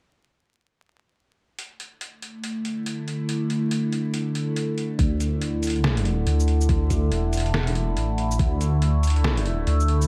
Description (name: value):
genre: deep dubstep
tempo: 141 BPM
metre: 4/4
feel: swing 62% on 16ths, half-time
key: unclear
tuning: A4 = 443 Hz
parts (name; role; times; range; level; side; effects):
- overtone-sweeping drone; sustained chords; 2.3-10.1 s; D3 to E4; -29 LUFS; equal; chorus, built-in reverb, phaser
- trip hop sampler-style drum kit; drums; 1.6-10.1 s; hi-hat, shaker, snare drum; -33 LUFS; equal; none
- dark detuned saw bass; bass; 5.0-10.1 s; E1 to D2; -24 LUFS; equal; none
- electronic kick drum; drums; 5.0-8.5 s; none; -24 LUFS; equal; overdrive
room: light reverb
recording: vinyl crackle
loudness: -24 LUFS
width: mono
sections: 1.6-5.0 A section; 5.0-10.1 B section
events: filter sweep on synth drone 1.6-5.0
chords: 1.6 D5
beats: | 1.58 2.01 2.44 2.86 | 3.29 3.71 4.14 4.56 | 4.99 5.41 5.84 6.26 | 6.69 7.12 7.54 7.97 | 8.39 8.82 9.24 9.67